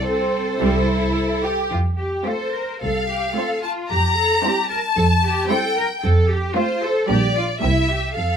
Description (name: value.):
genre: quick classical-period movement for string orchestra.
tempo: 111 BPM.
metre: 4/4.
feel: straight.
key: F major.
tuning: A4 = 439 Hz.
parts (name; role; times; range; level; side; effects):
rich symphonic violin section; melody; 0.0-8.4 s; C5 to Bb5; -22 LUFS; left 2 dB; none.
rich symphonic cello section; bass; 0.0-8.4 s; E4 to Bb4; -24 LUFS; equal; none.
rich studio violin section; second line; 0.1-8.0 s; C4 to C5; -26 LUFS; right 1 dB; none.
rich symphonic viola section; accompaniment; 0.6-8.0 s; G3 to C4; -25 LUFS; right 2 dB; none.
rich studio double bass section; bass; 0.6-8.4 s; Bb1 to F2; -21 LUFS; right 1 dB; none.
room: light reverb.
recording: none.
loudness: -17 LUFS.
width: side -8 dB against mid.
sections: 0.0-8.4 A section.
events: none.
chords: 0.0 F/C (rootless); 0.6 C; 1.7 F; 3.9 C7/F; 6.0 F; 7.1 Gm/Bb; 7.6 C7.